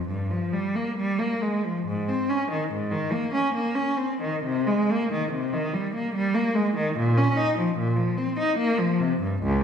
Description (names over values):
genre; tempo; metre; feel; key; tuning
classical, baroque-style suite movement for unaccompanied cello; 71 BPM; 3/4; uneven beats, rubato; Ab major; A4 = 440 Hz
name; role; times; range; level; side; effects
rich cello; solo; 0.0-9.6 s; Db2 to Eb4; -23 LUFS; equal; none
room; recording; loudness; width
wet recital hall reverb, RT60 1.4 s; heard from further back in the room; -23 LUFS; side -7 dB against mid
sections
0.0-1.8 A section; 1.8-9.6 A section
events
none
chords
none